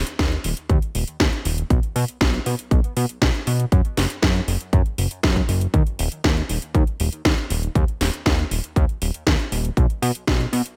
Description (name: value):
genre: italo disco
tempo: 119 BPM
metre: 4/4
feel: straight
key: Eb minor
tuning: A4 = 439 Hz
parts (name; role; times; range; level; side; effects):
- fat analog bass; bass; 0.0-10.6 s; Eb1 to Cb3; -25 LUFS; equal; none
- house drum kit; drums; 0.1-10.8 s; hi-hat, snare drum; -26 LUFS; equal; gated reverb
- electronic kick drum; drums; 0.2-10.4 s; none; -22 LUFS; equal; none
room: little or no reverb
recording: none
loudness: -21 LUFS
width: mono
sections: 0.0-10.8 A section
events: none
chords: none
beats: 0.19 0.70 1.20 | 1.70 2.21 2.71 3.22 | 3.72 4.22 4.73 5.23 | 5.74 6.24 6.75 7.25 | 7.75 8.26 8.76 9.27 | 9.77 10.28